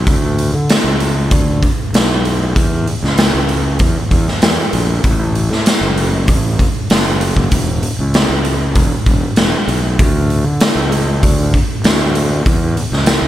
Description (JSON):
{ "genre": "blues rock power trio and southern rock", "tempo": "97 BPM", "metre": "4/4", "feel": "straight", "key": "unclear", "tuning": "A4 = 439 Hz", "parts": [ { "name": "fuzz fingered electric bass", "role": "bass", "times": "0.0-13.3 s", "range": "E1 to D3", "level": "-16 LUFS", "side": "equal", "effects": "overdrive" }, { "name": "raw garage drum kit", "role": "drums", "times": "0.1-13.2 s", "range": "hi-hat, kick drum, snare drum", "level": "-14 LUFS", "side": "equal", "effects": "none" } ], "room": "light reverb", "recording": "none", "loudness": "-12 LUFS", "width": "side -13 dB against mid", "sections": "0.0-13.3 A section", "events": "none", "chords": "none" }